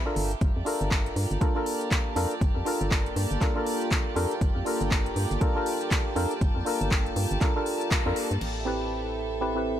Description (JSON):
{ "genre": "deep house", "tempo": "120 BPM", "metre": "4/4", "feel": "swing 60% on 16ths", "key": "unclear", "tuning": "A4 = 439 Hz", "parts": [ { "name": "percussive organ stab", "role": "stabs", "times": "0.0-9.8 s", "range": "C4 to B4", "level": "-30 LUFS", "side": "left 1 dB", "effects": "chorus, sidechain pumping, ping-pong delay" }, { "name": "rich chamber string section", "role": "texture", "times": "0.0-9.8 s", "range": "G4 to B5", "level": "-37 LUFS", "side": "right 3 dB", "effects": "sidechain pumping" }, { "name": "organ-like FM bass", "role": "bass", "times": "0.2-9.8 s", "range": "G1 to G2", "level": "-30 LUFS", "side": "equal", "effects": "sidechain pumping" }, { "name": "deep house drum kit", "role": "drums", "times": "0.2-8.5 s", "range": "crash cymbal, handclaps, hi-hat", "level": "-33 LUFS", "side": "equal", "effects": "small room reverb" }, { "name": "warm analog pad", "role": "sustained chords", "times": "0.7-9.8 s", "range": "Bb3 to B5", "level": "-36 LUFS", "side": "equal", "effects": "chorus, sidechain pumping" }, { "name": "electronic kick drum", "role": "drums", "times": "0.4-8.0 s", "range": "none", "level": "-26 LUFS", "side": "equal", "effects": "small room reverb" } ], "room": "light reverb, digital ambience", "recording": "none", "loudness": "-24 LUFS", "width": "side -11 dB against mid", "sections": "0.0-8.4 A section; 8.4-9.8 B section", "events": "band accent 7.9; filter sweep on synth stab 8.4-9.8", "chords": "0.2 Gm9; 8.4 Am9" }